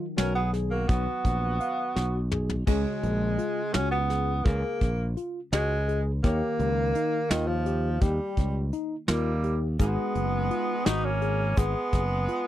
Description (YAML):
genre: progressive instrumental, band music in an uneven meter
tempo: 168 BPM (eighths)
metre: 5/8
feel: straight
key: Db mixolydian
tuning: A4 = 441 Hz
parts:
  - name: hollow-body jazz guitar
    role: accompaniment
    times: 0.0-12.5 s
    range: Db3 to Db5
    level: -36 LUFS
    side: left 1 dB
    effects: double-tracked left and right
  - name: tine electric piano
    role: arpeggios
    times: 0.0-12.5 s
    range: Eb4 to F5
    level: -34 LUFS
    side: left 3 dB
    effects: slow stereo tremolo
  - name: warm tenor saxophone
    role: melody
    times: 0.2-12.5 s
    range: Eb3 to Eb4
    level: -29 LUFS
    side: right 1 dB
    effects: none
  - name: mellow cor anglais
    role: second line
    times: 0.2-2.3, 9.1-12.5 s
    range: G3 to Bb4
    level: -37 LUFS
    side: right 6 dB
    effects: none
  - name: modern bright fingered electric bass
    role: bass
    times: 0.2-12.3 s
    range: Gb1 to Eb2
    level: -28 LUFS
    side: equal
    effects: none
  - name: soft brush drum kit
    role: drums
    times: 0.2-12.5 s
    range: crash cymbal, hi-hat, kick drum, snare drum, toms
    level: -26 LUFS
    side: equal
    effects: none
  - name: egg shaker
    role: percussion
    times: 9.8-11.9 s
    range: none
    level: -48 LUFS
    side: left 19 dB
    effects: none
room: little or no reverb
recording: dry, close 1970s-style studio recording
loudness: -24 LUFS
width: side -13 dB against mid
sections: 0.0-2.7 A section; 2.7-12.5 A section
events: drum fill 2.0-2.7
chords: 0.0 Cbmaj7; 2.7 Dbsus4; 6.2 Eb7; 9.8 Abm7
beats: 0.18 0.54 | 0.90 1.25 1.61 1.97 2.32 | 2.68 3.04 3.39 3.75 4.10 | 4.46 4.82 5.17 5.53 5.88 | 6.24 6.60 6.95 7.31 7.67 | 8.02 8.38 8.73 9.09 9.44 | 9.80 10.15 10.51 10.87 11.22 | 11.58 11.93 12.29